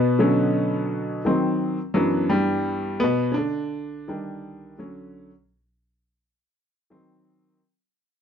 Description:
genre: hip hop.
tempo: 85 BPM.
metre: 4/4.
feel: swing 66% on 16ths.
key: unclear.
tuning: A4 = 440 Hz.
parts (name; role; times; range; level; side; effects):
clear upright piano; accompaniment; 0.0-7.6 s; F#2 to D4; -21 LUFS; equal; none.
room: moderate studio reverb, RT60 0.6 s.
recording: nothing above 7.5 kHz.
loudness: -21 LUFS.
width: side -8 dB against mid.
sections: 0.0-7.6 A section.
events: fade-out 0.0-7.6; upright piano solo 0.0-7.6.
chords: 0.0 Dmaj7; 1.3 D#m6; 2.0 Em9; 4.1 D#maj7; 4.8 Dmaj7; 6.9 D#m6.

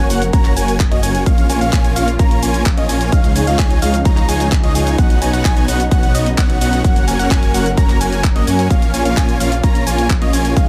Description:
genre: EDM, festival progressive house.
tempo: 129 BPM.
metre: 4/4.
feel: straight.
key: unclear.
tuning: A4 = 440 Hz.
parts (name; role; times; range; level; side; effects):
muted studio string section; sustained chords; 0.0-10.7 s; E#3 to A#4; -27 LUFS; equal; vintage 12-bit sampler grit, sidechain pumping.
unison lead; arpeggios; 0.0-10.7 s; D#5 to A#5; -25 LUFS; equal; sidechain pumping, dub echo.
big supersaw lead; riff; 0.0-10.7 s; G#3 to A#5; -22 LUFS; equal; sidechain pumping, dub echo.
detuned saw bass; bass; 0.0-10.7 s; F#1 to F#2; -22 LUFS; equal; sidechain pumping.
house drum kit; drums; 0.1-10.7 s; handclaps, hi-hat, shaker; -27 LUFS; equal; none.
electronic kick drum; drums; 0.3-10.7 s; none; -16 LUFS; equal; overdrive.
room: little or no reverb.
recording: none.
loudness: -14 LUFS.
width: mono.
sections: 0.0-10.7 A section.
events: none.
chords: 0.0 F#; 1.3 A#m; 3.1 C#add9; 5.0 Badd9; 6.8 F#; 8.7 A#m.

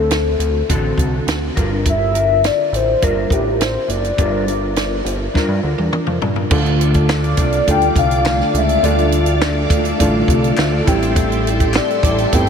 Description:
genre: indie pop, bedroom pop.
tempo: 103 BPM.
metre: 4/4.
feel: straight.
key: unclear.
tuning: A4 = 439 Hz.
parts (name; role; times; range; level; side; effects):
soft octave-layered synth lead; melody; 0.0-12.5 s; G4 to G5; -20 LUFS; left 3 dB; phaser, analog chorus, ping-pong delay.
mellow electric guitar; accompaniment; 0.0-12.5 s; A2 to Bb4; -22 LUFS; left 2 dB; ensemble chorus, warbly pitch drift.
fat analog bass; bass; 0.0-12.5 s; F#1 to G2; -20 LUFS; right 1 dB; none.
compact cocktail drum kit; drums; 0.1-12.5 s; crash cymbal, hi-hat, kick drum, snare drum, toms; -20 LUFS; right 1 dB; none.
dark upright piano; accompaniment; 6.5-12.5 s; A3 to E5; -22 LUFS; right 3 dB; cassette tape.
string machine, full ensemble; sustained chords; 6.5-12.5 s; A4 to D6; -22 LUFS; right 1 dB; ensemble chorus.
group handclap; percussion; 7.1-11.9 s; none; -33 LUFS; left 6 dB; none.
room: moderate huge ambient reverb, RT60 7.8 s.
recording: dreamy mix soaked in reverb.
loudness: -14 LUFS.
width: side -7 dB against mid.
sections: 0.0-6.5 A section; 6.5-12.5 B section.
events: drum fill 5.3-6.5.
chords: 0.0 D7; 1.6 Gm7; 6.5 Dm; 10.9 Am7.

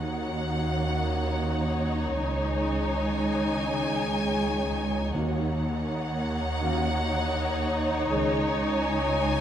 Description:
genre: cinematic, suspense film score.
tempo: free time.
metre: none.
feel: none.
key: Eb minor.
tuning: A4 = 439 Hz.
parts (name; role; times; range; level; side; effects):
warm symphonic violin section; melody; 0.0-9.4 s; Gb5 to Ab5; -34 LUFS; left 3 dB; none.
warm studio violin section; second line; 0.0-9.4 s; Db5; -32 LUFS; equal; none.
warm symphonic viola section; accompaniment; 0.0-9.4 s; Eb4; -32 LUFS; left 1 dB; none.
mellow French horn section; sustained chords; 0.0-8.4 s; Db4 to Ab4; -37 LUFS; left 4 dB; none.
warm trombone section; sustained chords; 0.0-8.4 s; Eb3 to Bb3; -36 LUFS; right 3 dB; none.
warm symphonic cello section; bass; 0.0-9.4 s; Db2 to Eb2; -32 LUFS; right 2 dB; none.
warm symphonic double bass section; bass; 0.0-9.4 s; Db2 to Eb2; -31 LUFS; right 2 dB; none.
timpani; percussion; 0.0-0.2, 5.1-6.2 s; Eb3; -37 LUFS; left 2 dB; none.
room: wet scoring stage reverb, RT60 1.9 s.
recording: none.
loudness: -25 LUFS.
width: side -10 dB against mid.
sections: 0.0-9.4 A section.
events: none.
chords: 0.0 Ebm7; 2.2 Dbsus2; 5.1 Ebm7; 8.1 Dbsus2.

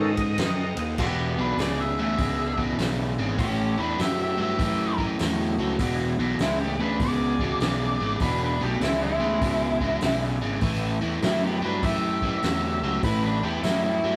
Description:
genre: blues rock power trio and southern rock.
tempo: 100 BPM.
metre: 4/4.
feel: swing 65% on 8ths.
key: unclear.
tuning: A4 = 440 Hz.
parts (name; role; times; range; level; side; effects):
overdriven tonewheel organ; sustained chords; 0.0-14.2 s; D#3 to D#5; -38 LUFS; equal; none.
fuzz fingered electric bass; bass; 0.0-14.2 s; E1 to G#2; -31 LUFS; equal; overdrive.
vintage drum kit; drums; 0.2-13.8 s; crash cymbal, hi-hat, kick drum, ride cymbal, snare drum; -32 LUFS; equal; none.
octave-fuzz lead guitar; melody; 1.0-14.2 s; E4 to E5; -31 LUFS; equal; distortion.
dark smooth lead guitar; second line; 1.0-14.2 s; G3 to G#4; -36 LUFS; equal; overdrive.
biting overdriven guitar; riff; 1.0-14.2 s; E2 to F#3; -30 LUFS; equal; none.
room: moderate studio reverb, RT60 0.6 s.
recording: rough rehearsal-room recording.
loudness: -25 LUFS.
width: mono.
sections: 1.0-14.2 A section.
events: none.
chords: 0.0 B7 (rootless); 1.0 E7; 3.4 A7; 5.8 E7; 10.6 A7.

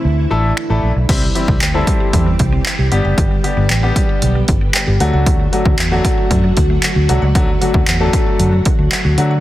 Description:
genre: dance-pop.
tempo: 115 BPM.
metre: 4/4.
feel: straight.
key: unclear.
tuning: A4 = 440 Hz.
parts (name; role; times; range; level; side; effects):
string machine, full ensemble; sustained chords; 0.0-9.4 s; D3 to G4; -23 LUFS; equal; ensemble chorus, sidechain pumping.
vintage muted fingered electric bass; bass; 0.0-9.4 s; F#1 to D3; -15 LUFS; equal; sidechain pumping.
clear baby grand piano; accompaniment; 0.3-9.3 s; F#3 to A4; -20 LUFS; left 3 dB; sidechain pumping.
punchy analog drum machine; drums; 0.6-9.3 s; crash cymbal, finger snaps, handclaps, hi-hat, kick drum; -16 LUFS; equal; soft clipping on snare.
mallet-like synth pluck; arpeggios; 1.1-9.4 s; D3 to G5; -26 LUFS; right 4 dB; chorus, sidechain pumping, digital delay.
room: light reverb.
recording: dense, heavily limited modern master.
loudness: -12 LUFS.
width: side -15 dB against mid.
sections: 0.0-1.1 A section; 1.1-9.4 B section.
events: break 0.0-1.1.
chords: 0.0 Dsus2; 1.1 C; 2.9 G; 5.0 D.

